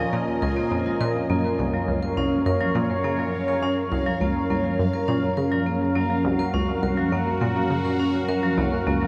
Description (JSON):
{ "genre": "ambient, sequencer-driven space music", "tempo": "103 BPM", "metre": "4/4", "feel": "straight", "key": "unclear", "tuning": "A4 = 440 Hz", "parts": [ { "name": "sweeping resonant pad", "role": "sustained chords", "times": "0.0-9.1 s", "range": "Gb2 to Eb5", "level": "-27 LUFS", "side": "equal", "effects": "chorus" }, { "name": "vibraphone with hard mallets", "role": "arpeggios", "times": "0.0-9.1 s", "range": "F3 to Bb4", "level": "-29 LUFS", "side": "equal", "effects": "analog delay" }, { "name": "analog pluck", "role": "riff", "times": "0.0-9.1 s", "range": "C2 to Db3", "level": "-29 LUFS", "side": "equal", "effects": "chorus, analog delay" }, { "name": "bubbling stepped-filter texture", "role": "texture", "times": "0.0-9.1 s", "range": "F4 to Ab5", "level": "-38 LUFS", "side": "equal", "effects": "chorus, built-in reverb" } ], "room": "wet huge ambient reverb, RT60 8.0 s", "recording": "dreamy mix soaked in reverb", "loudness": "-23 LUFS", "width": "mono", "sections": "0.0-9.1 A section", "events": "none", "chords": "0.0 Bbm; 1.3 Gb", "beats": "0.13 0.71 | 1.30 1.88 2.46 3.04 | 3.63 4.21 4.79 5.38 | 5.96 6.54 7.12 7.71 | 8.29 8.87" }